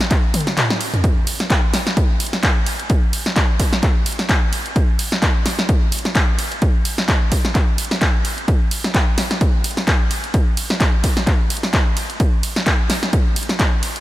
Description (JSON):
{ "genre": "house", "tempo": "129 BPM", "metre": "4/4", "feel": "swing 56% on 16ths", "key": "none", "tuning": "none", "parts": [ { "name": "punchy analog drum machine", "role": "drums", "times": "0.0-14.0 s", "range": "handclaps, hi-hat, ride cymbal, snare drum, toms", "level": "-20 LUFS", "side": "equal", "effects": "none" }, { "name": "electronic kick drum", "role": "drums", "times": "0.1-13.7 s", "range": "none", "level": "-17 LUFS", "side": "equal", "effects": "none" } ], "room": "light reverb, digital ambience", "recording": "none", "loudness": "-15 LUFS", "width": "side -16 dB against mid", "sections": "0.0-14.0 A section", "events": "drum fill 0.3-1.0; kick drops out 0.6-1.0", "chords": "none" }